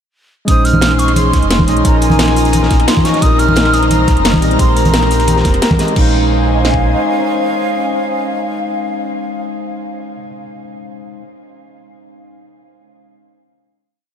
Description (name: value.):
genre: liquid drum and bass.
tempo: 175 BPM.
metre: 4/4.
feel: straight.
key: Bb dorian.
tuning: A4 = 440 Hz.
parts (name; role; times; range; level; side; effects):
mellow hollow silver concert flute; melody; 0.5-9.5 s; F5 to F6; -19 LUFS; right 1 dB; tape echo.
overdriven tine electric piano; accompaniment; 0.5-11.2 s; F3 to Eb5; -18 LUFS; left 1 dB; lush chorus, tape echo.
airy breathy pad; sustained chords; 0.7-9.5 s; Db4 to C6; -21 LUFS; left 2 dB; chorus, phaser.
sub bass with octave; bass; 0.5-7.0 s; F1 to Bb1; -16 LUFS; equal; none.
crunchy breakbeat drum kit; drums; 0.5-5.9 s; hi-hat, snare drum; -25 LUFS; equal; high-pass filter on hats, high-pass filter on snare, high-pass filter on room.
drum and bass drum kit; drums; 0.5-6.8 s; kick drum, snare drum; -14 LUFS; equal; none.
drum and bass drum kit; drums; 0.5-6.0 s; crash cymbal, hi-hat, snare drum; -20 LUFS; equal; none.
congas; percussion; 0.7-5.8 s; none; -19 LUFS; equal; none.
room: moderate huge ambient reverb, RT60 7.9 s.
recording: dreamy mix soaked in reverb.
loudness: -10 LUFS.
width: side -8 dB against mid.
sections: 0.5-6.0 drop; 6.0-8.7 final chord.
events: drop 0.5-6.0.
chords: 0.5 Bbm11; 1.8 Db69/Bb; 3.2 Cm7/Bb; 4.6 Abmaj9/Bb; 6.0 Bbm11.